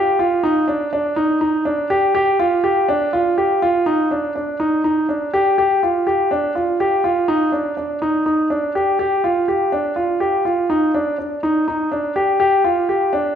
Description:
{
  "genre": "progressive instrumental, progressive",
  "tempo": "246 BPM (eighths)",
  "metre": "7/8",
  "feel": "straight",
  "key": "unclear",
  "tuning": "A4 = 439 Hz",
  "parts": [
    { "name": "warm concert grand piano", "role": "solo", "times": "0.0-13.3 s", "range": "D4 to G4", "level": "-16 LUFS", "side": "equal", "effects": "none" }
  ],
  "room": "wet recital hall reverb, RT60 1.3 s",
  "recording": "recorded in a church or concert hall",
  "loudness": "-16 LUFS",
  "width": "side -8 dB against mid",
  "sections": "0.0-3.9 A section; 3.9-13.4 B section",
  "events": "none",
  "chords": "none",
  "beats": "0.19 | 0.44 0.68 0.93 1.17 1.42 1.66 1.91 | 2.15 2.40 2.64 2.88 3.13 3.37 3.62 | 3.86 4.11 4.35 4.60 4.84 5.08 5.33 | 5.57 5.82 6.06 6.31 6.55 6.79 7.04 | 7.28 7.53 7.77 8.01 8.26 8.50 8.75 | 8.99 9.23 9.48 9.72 9.96 10.21 10.45 | 10.70 10.94 11.18 11.43 11.67 11.91 12.16 | 12.40 12.64 12.89 13.13"
}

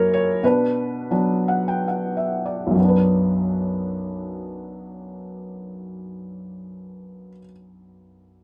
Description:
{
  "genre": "classical, lyrical solo piano",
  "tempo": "62-100 BPM",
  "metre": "3/4",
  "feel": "rubato",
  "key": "B minor",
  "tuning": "A4 = 438 Hz",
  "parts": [
    { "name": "felt-muted upright piano", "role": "solo", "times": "0.0-8.4 s", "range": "B1 to G5", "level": "-23 LUFS", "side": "equal", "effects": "none" }
  ],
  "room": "moderate small room reverb, RT60 0.6 s",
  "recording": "none",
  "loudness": "-21 LUFS",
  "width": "mono",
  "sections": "0.0-2.8 A section; 2.8-8.3 B section",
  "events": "slowing down 0.0-2.8; felt piano fill 1.1-2.8",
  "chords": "0.4 Bm",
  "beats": "| 0.42 1.10 1.88 | 2.78 3.70 4.57 | 5.46 6.39 7.33"
}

